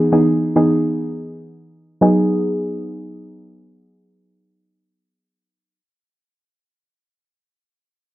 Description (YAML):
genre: dancehall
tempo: free time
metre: none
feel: none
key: G# minor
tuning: A4 = 438 Hz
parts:
  - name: soft round pluck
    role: accompaniment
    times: 0.0-5.8 s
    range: E3 to G#4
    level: -15 LUFS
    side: equal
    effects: chorus
room: little or no reverb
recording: dry, gritty hardware recording, low-pass filter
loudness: -15 LUFS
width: side -16 dB against mid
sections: 0.0-2.0 A section; 2.0-4.3 B section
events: filter sweep 0.0-2.0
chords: 0.0 Emaj7; 2.0 G#m7